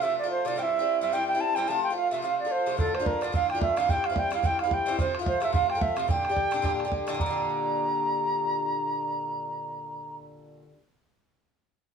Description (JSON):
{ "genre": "celtic folk, Celtic reel", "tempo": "218 BPM", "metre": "4/4", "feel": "swing 57% on 8ths", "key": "G dorian", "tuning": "A4 = 445 Hz", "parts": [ { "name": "wooden flute", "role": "melody", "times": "0.0-10.2 s", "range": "A4 to Bb5", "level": "-26 LUFS", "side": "right 3 dB", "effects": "plate reverb" }, { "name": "Irish bouzouki", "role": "accompaniment", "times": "0.0-10.8 s", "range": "G2 to G4", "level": "-31 LUFS", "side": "left 3 dB", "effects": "none" }, { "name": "bodhran", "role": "percussion", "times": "2.8-7.3 s", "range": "none", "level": "-30 LUFS", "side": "right 2 dB", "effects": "none" } ], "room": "moderate studio reverb, RT60 0.7 s", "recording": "small room ambience", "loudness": "-24 LUFS", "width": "side -6 dB against mid", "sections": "0.0-7.2 A section; 7.2-9.4 B section", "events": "none", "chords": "0.0 F; 0.6 C; 1.7 F; 2.8 Dm; 3.9 C; 5.0 F; 6.1 Gm" }